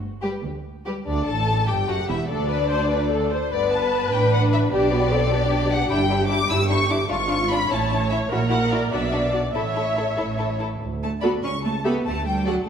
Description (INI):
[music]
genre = quick classical-period movement for string orchestra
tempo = 93-102 BPM (dotted quarters)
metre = 6/8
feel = rubato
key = G major, D major from 5.9 s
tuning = A4 = 439 Hz
[part]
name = clear studio cello section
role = bass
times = 0.0-12.7 s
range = D2 to C#4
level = -27 LUFS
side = right 3 dB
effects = none
[part]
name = rich studio double bass section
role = bass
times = 0.0-12.7 s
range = E1 to D2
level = -28 LUFS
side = right 3 dB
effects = none
[part]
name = warm studio violin section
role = melody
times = 0.2-12.5 s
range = B4 to E6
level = -26 LUFS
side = left 4 dB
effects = none
[part]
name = rich studio violin section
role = second line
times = 0.2-12.7 s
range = B3 to C#6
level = -26 LUFS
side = left 3 dB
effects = none
[part]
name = warm studio viola section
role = accompaniment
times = 0.2-12.6 s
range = G3 to E5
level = -26 LUFS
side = right 1 dB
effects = none
[sound]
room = wet scoring stage reverb, RT60 1.6 s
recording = none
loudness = -20 LUFS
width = side -8 dB against mid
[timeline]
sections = 0.0-1.1 A section; 1.1-10.8 B section; 10.8-12.7 A section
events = none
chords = 0.0 G5; 2.3 Bm7/D; 3.5 G; 4.7 G/B; 5.9 Em7/G; 7.1 C#7b9/G#; 7.7 A; 8.3 F#7/A#; 8.9 Bm; 9.6 A; 10.8 D; 11.4 A7/C#; 12.1 D